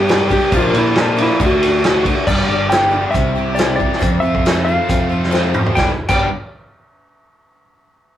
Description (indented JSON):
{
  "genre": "folk rock and heartland rock",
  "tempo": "137 BPM",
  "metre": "4/4",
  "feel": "straight",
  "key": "unclear",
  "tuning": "A4 = 440 Hz",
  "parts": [
    { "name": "clean lap steel guitar", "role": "melody", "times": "0.0-6.3 s", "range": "D4 to G5", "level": "-18 LUFS", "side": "equal", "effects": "none" },
    { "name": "picked steel-string acoustic guitar", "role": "accompaniment", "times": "0.0-6.3 s", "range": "G2 to B4", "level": "-21 LUFS", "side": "left 4 dB", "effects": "none" },
    { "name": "cranked stack guitar", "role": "riff", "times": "0.0-6.3 s", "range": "F2 to G4", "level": "-23 LUFS", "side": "right 2 dB", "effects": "overdrive" },
    { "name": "fingered electric bass", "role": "bass", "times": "0.0-6.3 s", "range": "G1 to Bb2", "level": "-22 LUFS", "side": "right 1 dB", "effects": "none" },
    { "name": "vintage drum kit", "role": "drums", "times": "0.1-6.2 s", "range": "crash cymbal, hi-hat, kick drum, ride cymbal, snare drum, toms", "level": "-17 LUFS", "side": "right 1 dB", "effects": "none" }
  ],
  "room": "moderate studio reverb, RT60 0.5 s",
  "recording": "rough rehearsal-room recording",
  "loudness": "-13 LUFS",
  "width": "side -11 dB against mid",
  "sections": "0.0-2.3 A section; 2.3-5.8 B section; 5.8-7.5 C section",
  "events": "drum fill 5.3-5.8",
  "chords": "0.0 G; 0.5 Bb; 1.4 D; 2.3 G; 3.1 C; 4.0 F; 5.8 G"
}